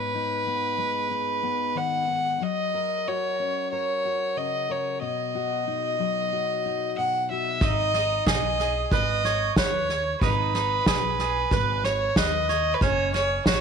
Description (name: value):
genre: indie folk with a building arrangement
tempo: 92 BPM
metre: 4/4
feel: straight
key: G# minor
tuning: A4 = 440 Hz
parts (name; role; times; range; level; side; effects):
- warm fiddle; melody; 0.0-13.6 s; B4 to F#5; -25 LUFS; right 1 dB; none
- fingerpicked steel-string acoustic guitar; accompaniment; 0.0-7.6 s; G#2 to A#4; -31 LUFS; left 14 dB; none
- bowl-back mandolin; arpeggios; 7.6-13.6 s; C#4 to C#5; -30 LUFS; right 12 dB; none
- upright bass; bass; 7.6-13.6 s; F#1 to D#2; -30 LUFS; equal; none
- soft-mallet drum kit; drums; 7.6-13.6 s; kick drum, snare drum; -26 LUFS; equal; none
room: light reverb, small room ambience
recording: 1960s-style stereo with parts hard left and right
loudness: -23 LUFS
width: side -6 dB against mid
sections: 0.0-7.6 A section; 7.6-13.6 A section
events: none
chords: 0.0 G#m; 2.4 F#; 5.0 B; 7.6 G#m; 12.8 F#